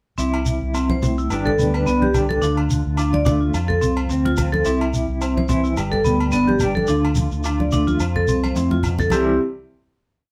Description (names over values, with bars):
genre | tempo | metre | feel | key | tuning
highlife guitar band | 108 BPM | 4/4 | swing 55% on 16ths | C major | A4 = 440 Hz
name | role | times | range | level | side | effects
mellow electric guitar | accompaniment | 0.2-9.4 s | F2 to G4 | -28 LUFS | equal | tremolo
vibraphone with medium hard mallets | arpeggios | 0.2-9.4 s | B3 to D5 | -23 LUFS | equal | none
fingered electric bass | bass | 0.2-9.4 s | G1 to F2 | -25 LUFS | equal | none
shekere | percussion | 0.2-9.4 s | none | -29 LUFS | equal | none
agogo bells | percussion | 0.3-9.3 s | none | -36 LUFS | equal | none
congas | percussion | 0.9-9.4 s | none | -28 LUFS | equal | none
room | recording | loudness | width
moderate studio reverb, RT60 0.6 s | band playing live in one room | -20 LUFS | mono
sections
0.2-9.1 groove; 9.1-10.3 final chord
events
drum fill 8.4-9.1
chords
0.2 C; 1.3 Gadd9; 2.4 Dm; 3.5 F; 4.7 C; 5.8 Gadd9; 6.9 Dm; 8.0 F; 9.1 C